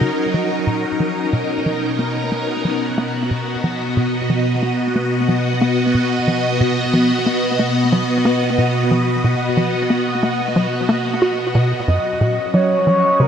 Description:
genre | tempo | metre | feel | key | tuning
ambient, sequencer-driven space music | 91 BPM | 4/4 | straight | unclear | A4 = 439 Hz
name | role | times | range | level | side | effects
phased string machine | sustained chords | 0.0-13.3 s | B2 to D#5 | -17 LUFS | equal | ensemble chorus, phaser
tight sequencer bass | riff | 0.0-13.3 s | F#2 to F#4 | -20 LUFS | equal | analog chorus, tape echo
expressive portamento lead | melody | 11.9-13.3 s | A#4 to D#5 | -16 LUFS | equal | lush chorus, tape echo
room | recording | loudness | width
wet shimmer reverb, RT60 7.2 s | none | -16 LUFS | side -8 dB against mid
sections
0.0-13.3 A section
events
filter sweep on analog synth bass 0.0-13.3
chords
0.0 F#maj7; 1.3 B; 11.9 F#maj7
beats
0.01 0.67 | 1.33 1.99 2.65 3.31 | 3.96 4.62 5.28 5.94 | 6.60 7.26 7.92 8.58 | 9.24 9.90 10.56 11.22 | 11.88 12.54 13.20

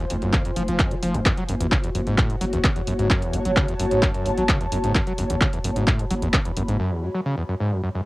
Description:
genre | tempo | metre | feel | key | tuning
driving peak-time techno | 130 BPM | 4/4 | straight | unclear | A4 = 442 Hz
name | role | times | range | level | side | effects
overdriven acid bass | riff | 0.0-8.0 s | E2 to Gb3 | -25 LUFS | equal | distortion, analog chorus, sidechain pumping, cassette tape, tape echo
ethereal airy pad | texture | 0.0-6.8 s | F4 to B5 | -29 LUFS | equal | ensemble chorus, built-in reverb, sidechain pumping, cassette tape
growling 808-style bass | bass | 0.1-6.8 s | F1 to Gb1 | -27 LUFS | equal | overdrive, sidechain pumping, low-pass filter
punchy analog drum machine | drums | 0.1-6.8 s | handclaps, hi-hat | -25 LUFS | equal | overdrive, cassette tape
electronic kick drum | drums | 0.3-6.4 s | none | -22 LUFS | equal | overdrive, cassette tape
room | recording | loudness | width
moderate studio reverb, RT60 0.6 s | home recording on cassette | -20 LUFS | side -20 dB against mid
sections
0.0-8.1 A section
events
break 6.8-8.1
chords
0.0 Fm; 1.3 Gbm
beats
0.33 0.80 | 1.26 1.72 2.18 2.64 | 3.10 3.56 4.03 4.49 | 4.95 5.41 5.87 6.33 | 6.80 7.26 7.72

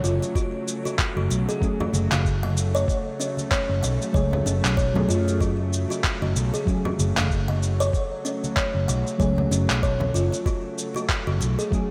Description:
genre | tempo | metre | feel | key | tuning
organic downtempo | 95 BPM | 4/4 | swing 58% on 16ths | F# minor | A4 = 440 Hz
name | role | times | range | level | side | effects
deep mellow chord stab | accompaniment | 0.0-11.9 s | F#3 to G#4 | -32 LUFS | equal | chorus, sidechain pumping, digital delay
bowed-like drone | sustained chords | 0.0-11.9 s | C#3 to A3 | -34 LUFS | equal | built-in reverb, sidechain pumping
kalimba | arpeggios | 0.0-11.7 s | C#4 to F#5 | -31 LUFS | equal | digital delay
fretless electric bass | bass | 0.0-11.5 s | F#1 to F#2 | -26 LUFS | equal | tube saturation
electronic cabasa and handclaps | drums | 0.0-11.9 s | none | -32 LUFS | equal | none
congas | percussion | 0.2-11.6 s | none | -34 LUFS | equal | none
electronic kick drum | drums | 0.4-11.9 s | none | -28 LUFS | equal | none
room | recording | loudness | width
moderate plate reverb, RT60 2.7 s | bright 1980s-style digital production | -24 LUFS | mono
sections
0.0-11.9 A section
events
none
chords
0.0 F#madd9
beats
| 0.35 0.99 1.62 2.25 | 2.88 3.51 4.14 4.78 | 5.41 6.04 6.67 7.30 | 7.93 8.56 9.20 9.83 | 10.46 11.09 11.72

